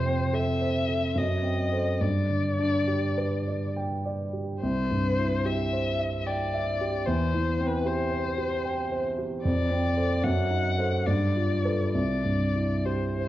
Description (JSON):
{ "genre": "classical, slow romantic movement for piano trio", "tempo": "66-77 BPM", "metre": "3/4", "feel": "rubato", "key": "C major", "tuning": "A4 = 440 Hz", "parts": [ { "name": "rich violin", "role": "melody", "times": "0.0-13.3 s", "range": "B4 to F#5", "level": "-30 LUFS", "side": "left 4 dB", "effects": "none" }, { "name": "dark grand piano", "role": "accompaniment", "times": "0.0-13.3 s", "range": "C2 to G5", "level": "-26 LUFS", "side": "right 1 dB", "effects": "none" } ], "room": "moderate recital hall reverb, RT60 1.6 s", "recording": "worn, warbling old tape, cassette tape, warbly pitch drift, nothing above 7.5 kHz", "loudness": "-24 LUFS", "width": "side -14 dB against mid", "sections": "0.0-13.3 A section", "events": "none", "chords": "0.0 F; 1.2 F#dim7; 2.0 G; 4.6 C; 7.1 C/E; 9.4 F6; 10.2 F#dim7; 11.1 G9; 11.9 C", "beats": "0.34 1.16 | 2.01 2.88 3.76 | 4.62 5.45 6.26 | 7.06 7.85 8.65 | 9.45 10.23 11.07 | 11.94 12.85" }